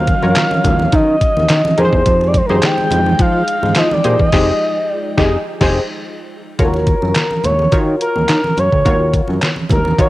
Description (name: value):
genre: early-eighties boogie funk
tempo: 106 BPM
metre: 4/4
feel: straight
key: unclear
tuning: A4 = 440 Hz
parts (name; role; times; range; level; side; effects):
- expressive synth lead; melody; 0.0-10.1 s; Bb4 to G5; -17 LUFS; equal; chorus, cassette tape
- funky polysynth comp; accompaniment; 0.0-10.1 s; Eb4 to Eb5; -20 LUFS; left 1 dB; chorus, cassette tape
- soft string machine; sustained chords; 0.0-6.5 s; Eb3 to G5; -24 LUFS; equal; ensemble chorus, cassette tape
- fat analog bass; bass; 0.0-10.1 s; F1 to F3; -17 LUFS; equal; none
- detuned 8-bit digital drum machine; drums; 0.1-10.1 s; crash cymbal, handclaps, hi-hat, kick drum, snare drum; -17 LUFS; equal; cassette tape
- congas; percussion; 0.2-10.0 s; none; -23 LUFS; right 2 dB; none
room: light reverb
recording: home recording on cassette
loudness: -12 LUFS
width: side -17 dB against mid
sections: 0.0-6.6 A section; 6.6-10.1 B section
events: band accent 4.3-6.6; analog synth lead solo 6.6-10.1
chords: 0.0 Ebm9; 1.8 Fm9; 6.6 Ebm9